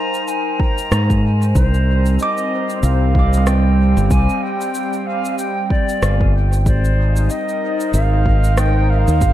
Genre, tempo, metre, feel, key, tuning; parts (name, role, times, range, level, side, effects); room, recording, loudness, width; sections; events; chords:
ambient dub; 94 BPM; 4/4; swing 58% on 16ths; C minor; A4 = 441 Hz
silver concert flute; melody; 0.0-9.3 s; C5 to Bb5; -22 LUFS; equal; dub echo
warm analog pad; sustained chords; 0.0-9.3 s; G3 to C5; -23 LUFS; equal; chorus
electronic shaker and rim click; drums; 0.1-9.3 s; -27 LUFS; right 1 dB; overdrive, dub echo
electronic kick drum; drums; 0.6-9.3 s; -17 LUFS; equal; overdrive
modern bright fingered electric bass; bass; 0.9-9.3 s; G1 to Ab2; -14 LUFS; equal
kalimba; arpeggios; 2.2-5.1 s; G3 to D6; -28 LUFS; right 3 dB; dub echo
moderate recital hall reverb, RT60 1.4 s; -14 LUFS; side -13 dB against mid
0.0-9.3 A section
0.0 Abadd9; 1.6 Cm9; 6.7 Ab69